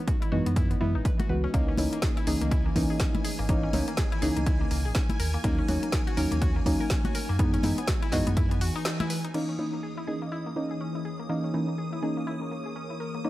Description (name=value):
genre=deep house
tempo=123 BPM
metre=4/4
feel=swing 59% on 16ths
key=C# dorian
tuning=A4 = 438 Hz
part: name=mallet-like synth pluck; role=arpeggios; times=0.0-13.3 s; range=A#3 to B4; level=-38 LUFS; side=left 3 dB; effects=chorus, sidechain pumping, tape echo
part: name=deep dark ambient pad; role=texture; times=0.0-13.3 s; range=E3 to D#6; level=-38 LUFS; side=right 1 dB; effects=chorus, built-in reverb, sidechain pumping
part: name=deep house drum kit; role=drums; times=0.1-9.5 s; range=crash cymbal, hi-hat, snare drum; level=-35 LUFS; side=equal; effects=none
part: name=electronic kick drum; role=drums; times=0.1-8.5 s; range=none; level=-27 LUFS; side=equal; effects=overdrive
part: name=deep mellow chord stab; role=stabs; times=0.3-13.3 s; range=E3 to F#4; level=-30 LUFS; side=equal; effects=chorus, sidechain pumping, tape echo
part: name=sub bass with octave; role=bass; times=0.3-8.7 s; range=F#1 to F#2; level=-29 LUFS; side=equal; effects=sidechain pumping
part: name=congas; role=percussion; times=0.5-9.1 s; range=none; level=-34 LUFS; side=left 3 dB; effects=none
part: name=string machine, violins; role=texture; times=1.5-13.3 s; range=G#5 to D#6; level=-42 LUFS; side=right 1 dB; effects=ensemble chorus, sidechain pumping
part: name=soft string machine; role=sustained chords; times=9.3-13.3 s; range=E3 to D#6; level=-40 LUFS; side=equal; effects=phaser, ensemble chorus, sidechain pumping
room=digital ambience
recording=dry, gritty hardware recording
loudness=-25 LUFS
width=side -16 dB against mid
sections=0.0-9.3 A section; 9.3-13.3 B section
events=break 8.9-9.3; band accent 8.9; filter sweep on synth arpeggio sound 9.3-13.3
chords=0.0 F#13sus4; 1.5 C#m69; 5.2 D#m7; 7.4 F#13sus4; 9.3 C#m69